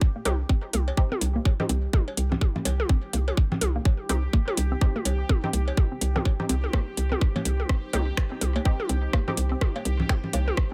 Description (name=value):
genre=minimal techno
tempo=125 BPM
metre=4/4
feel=swing 60% on 16ths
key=C minor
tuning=A4 = 440 Hz
part: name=electronic kick drum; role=drums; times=0.0-10.7 s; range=none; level=-24 LUFS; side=equal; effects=none
part: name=bubbling stepped-filter texture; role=texture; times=0.0-10.7 s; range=G4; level=-44 LUFS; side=equal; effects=chorus, built-in reverb, sidechain pumping
part: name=deep dark ambient pad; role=texture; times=1.2-10.7 s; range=Eb4 to G5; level=-42 LUFS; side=equal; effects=chorus, built-in reverb, sidechain pumping
part: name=hollow square pluck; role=riff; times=0.2-10.4 s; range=Bb3 to C4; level=-36 LUFS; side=equal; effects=chorus, sidechain pumping, tape echo
part: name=filtered dub chord stab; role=stabs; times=0.3-9.3 s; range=C4 to G4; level=-38 LUFS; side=equal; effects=chorus, digital delay
part: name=hollow knocking FM bass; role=bass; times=0.3-10.5 s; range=C2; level=-28 LUFS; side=equal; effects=sidechain pumping
part: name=booming analog drum machine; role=drums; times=0.3-10.4 s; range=finger snaps, hi-hat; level=-33 LUFS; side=equal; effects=overdrive
part: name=organic electronic drum kit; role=percussion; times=0.3-10.7 s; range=congas, cowbell, rim click, toms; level=-33 LUFS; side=equal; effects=digital delay
room=little or no reverb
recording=none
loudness=-25 LUFS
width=mono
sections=0.0-10.7 A section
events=filter sweep on synth arpeggio sound 0.0-10.7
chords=0.0 Cm